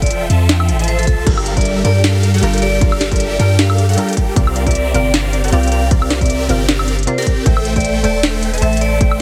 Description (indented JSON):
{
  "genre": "future bass",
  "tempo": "155 BPM",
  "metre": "4/4",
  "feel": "swing 56% on 16ths, half-time",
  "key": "G dorian",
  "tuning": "A4 = 436 Hz",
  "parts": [
    { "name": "vibraphone with hard mallets", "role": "melody", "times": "0.0-9.2 s", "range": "A4 to F5", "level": "-24 LUFS", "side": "equal", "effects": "sidechain pumping, dub echo" },
    { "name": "supersaw chords", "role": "riff", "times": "0.0-9.2 s", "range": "F3 to A5", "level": "-23 LUFS", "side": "equal", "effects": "phaser, sidechain pumping" },
    { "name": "warm 808-style bass", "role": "bass", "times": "0.0-9.2 s", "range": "E1 to G2", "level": "-18 LUFS", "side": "equal", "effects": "sidechain pumping" },
    { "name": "electronic kick drum", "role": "drums", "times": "0.0-9.1 s", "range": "none", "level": "-17 LUFS", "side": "equal", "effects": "none" },
    { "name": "trap drum kit", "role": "drums", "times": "0.0-9.2 s", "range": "crash cymbal, hi-hat, snare drum, woodblock", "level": "-22 LUFS", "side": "equal", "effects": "none" },
    { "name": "soft round pluck", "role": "accompaniment", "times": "1.3-9.1 s", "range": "C3 to G5", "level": "-25 LUFS", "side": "equal", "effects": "chorus, sidechain pumping, digital delay" }
  ],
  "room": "light reverb",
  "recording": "heavily compressed radio sound",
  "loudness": "-15 LUFS",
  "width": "mono",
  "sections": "0.0-9.2 A section",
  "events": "none",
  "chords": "0.0 Fmaj7; 1.3 Gm7; 4.4 C7sus4; 7.5 Am7",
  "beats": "0.10 0.49 0.88 | 1.27 1.65 2.04 2.43 | 2.81 3.20 3.59 3.98 | 4.36 4.75 5.14 5.52 | 5.91 6.30 6.69 7.07 | 7.46 7.85 8.23 8.62 | 9.01"
}